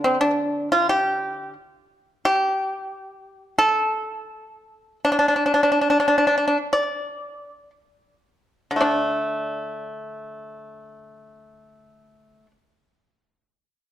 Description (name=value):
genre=chinese traditional, Chinese solo plucked strings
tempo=54-90 BPM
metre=4/4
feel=rubato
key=unclear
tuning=A4 = 435 Hz
part: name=pipa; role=solo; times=0.0-12.5 s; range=D3 to D5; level=-20 LUFS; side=equal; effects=slapback echo
room=moderate recital hall reverb, RT60 1.5 s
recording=dark, warm production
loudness=-19 LUFS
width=side -11 dB against mid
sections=0.0-8.8 A section; 8.8-13.0 B section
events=slowing down 2.2-8.8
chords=none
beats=0.21 0.88 1.56 | 2.24 2.91 3.58 4.29 | 5.03 5.84 6.73 7.74 | 8.84 9.92 10.95 11.99